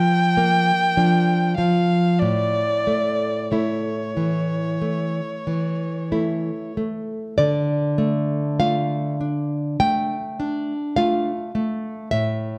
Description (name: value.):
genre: romantic duo for violin and classical guitar.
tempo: 46-53 BPM.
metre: 4/4.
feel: rubato.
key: D minor.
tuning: A4 = 440 Hz.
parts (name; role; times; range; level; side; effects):
rich violin; melody; 0.0-6.7 s; C#5 to G5; -25 LUFS; equal; none.
nylon-string guitar; accompaniment; 0.0-12.6 s; A2 to G5; -23 LUFS; equal; none.
room: moderate recital hall reverb, RT60 1.6 s.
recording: dark, warm production.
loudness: -22 LUFS.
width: mono.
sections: 0.0-7.4 A section; 7.4-12.6 B section.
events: none.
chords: 0.0 Bb; 2.2 A; 7.4 Dm.